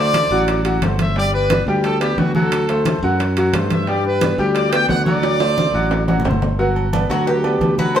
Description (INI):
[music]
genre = latin, salsa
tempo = 177 BPM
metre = 4/4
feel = straight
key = G major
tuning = A4 = 443 Hz
[part]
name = bright trumpet section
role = melody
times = 0.0-6.2 s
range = F#4 to G5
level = -20 LUFS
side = equal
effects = none
[part]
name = bright upright piano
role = accompaniment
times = 0.0-8.0 s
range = F#3 to G5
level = -21 LUFS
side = left 1 dB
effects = none
[part]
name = modern bright fingered electric bass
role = bass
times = 0.0-8.0 s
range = G1 to G2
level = -20 LUFS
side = equal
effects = none
[part]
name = bongos and cowbell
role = percussion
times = 0.1-8.0 s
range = none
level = -29 LUFS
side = left 1 dB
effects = none
[part]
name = congas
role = percussion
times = 0.1-8.0 s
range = none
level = -23 LUFS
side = left 1 dB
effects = none
[part]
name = timbales and agogo bells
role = percussion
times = 0.1-8.0 s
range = none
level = -27 LUFS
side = right 6 dB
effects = none
[part]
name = Cuban tres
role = melody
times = 7.1-8.0 s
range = F#4 to C5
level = -20 LUFS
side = equal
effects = none
[sound]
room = wet stone room reverb, RT60 1.0 s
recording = band playing live in one room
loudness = -15 LUFS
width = side -9 dB against mid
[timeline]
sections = 0.0-6.6 A section; 6.6-8.0 B section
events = drum fill 5.2-6.6; Cuban tres solo 6.6-8.0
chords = 0.0 D7; 1.2 Gmaj7; 2.5 D7; 3.9 Gmaj7; 5.2 D7; 6.6 Gmaj7